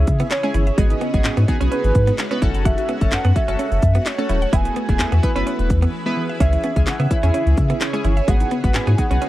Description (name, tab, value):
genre	dance-pop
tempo	128 BPM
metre	4/4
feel	straight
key	C# minor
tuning	A4 = 442 Hz
part	warm velvety synth lead	melody	0.0-9.3 s	B4 to G#5	-25 LUFS	right 2 dB	chorus, slapback echo
part	chorused retro synth keys	accompaniment	0.0-9.3 s	B3 to B4	-27 LUFS	left 1 dB	sidechain pumping
part	shimmering ambient pad	sustained chords	0.0-9.3 s	C#3 to B4	-29 LUFS	equal	chorus, built-in reverb, phaser, sidechain pumping
part	saturated sub bass	bass	0.0-9.2 s	D#1 to C#3	-18 LUFS	equal	sidechain pumping
part	house drum kit	drums	0.1-9.3 s	handclaps, hi-hat, kick drum, snare drum	-20 LUFS	equal	none
part	mallet-like synth pluck	arpeggios	0.2-9.2 s	E3 to F#5	-31 LUFS	left 2 dB	chorus, sidechain pumping, slapback echo
part	direct-recorded clean electric guitar	riff	0.2-9.3 s	G#3 to F#4	-27 LUFS	right 5 dB	lush chorus
room	little or no reverb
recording	dry, close 1970s-style studio recording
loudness	-16 LUFS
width	side -15 dB against mid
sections	0.0-9.3 A section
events	break 5.9-6.4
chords	0.0 C#m; 0.8 G#m7; 2.4 F#m; 4.5 E; 6.4 C#m; 8.3 G#m7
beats	0.31 | 0.78 1.25 1.72 2.19 | 2.65 3.12 3.59 4.06 | 4.53 5.00 5.47 5.93 | 6.40 6.87 7.34 7.81 | 8.28 8.75 9.22